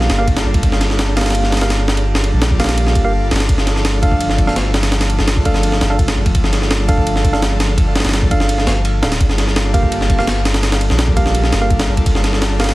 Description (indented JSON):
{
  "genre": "drum and bass, jungle",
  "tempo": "168 BPM",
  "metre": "4/4",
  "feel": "straight",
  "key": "G minor",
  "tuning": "A4 = 441 Hz",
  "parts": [
    { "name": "airy breathy pad", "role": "sustained chords", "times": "0.0-12.7 s", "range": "F3 to A4", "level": "-23 LUFS", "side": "equal", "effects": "chorus" },
    { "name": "mellow tine electric piano", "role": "stabs", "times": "0.0-12.7 s", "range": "Bb3 to F5", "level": "-22 LUFS", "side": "right 1 dB", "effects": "overdrive, vintage 12-bit sampler grit, dub echo" },
    { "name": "soft dub sub bass", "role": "bass", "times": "0.0-12.7 s", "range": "D1 to Bb1", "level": "-17 LUFS", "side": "equal", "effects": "tube saturation" },
    { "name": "jungle sampler-style drum kit", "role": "drums", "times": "0.0-12.7 s", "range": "kick drum, ride cymbal, snare drum", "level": "-16 LUFS", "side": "equal", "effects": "none" }
  ],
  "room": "light reverb",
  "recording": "heavily compressed radio sound, multiband compression, vinyl crackle",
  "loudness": "-13 LUFS",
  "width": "side -18 dB against mid",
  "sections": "0.0-12.7 A section",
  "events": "kick drops out 8.5-9.2",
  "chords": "0.0 Gm7; 3.5 Dm/G; 9.2 Gm7",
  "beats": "0.28 | 0.63 0.99 1.35 1.70 | 2.06 2.42 2.77 3.13 | 3.49 3.85 4.20 4.56 | 4.92 5.28 5.63 5.99 | 6.35 6.70 7.06 7.42 | 7.78 8.13 8.49 8.85 | 9.20 9.56 9.92 10.28 | 10.63 10.99 11.35 11.70 | 12.06 12.42"
}